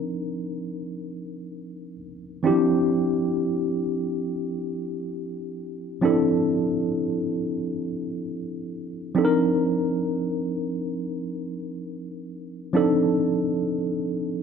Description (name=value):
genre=R&B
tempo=free time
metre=none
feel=none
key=D phrygian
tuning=A4 = 440 Hz
part: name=tine electric piano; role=solo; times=0.0-14.4 s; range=E3 to Bb4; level=-23 LUFS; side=equal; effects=medium stereo tremolo
room=moderate stone room reverb, RT60 1.5 s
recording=band playing live in one room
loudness=-23 LUFS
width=side -6 dB against mid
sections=0.0-14.4 A section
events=none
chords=0.0 Cm11; 2.4 Dm11; 9.2 Cm11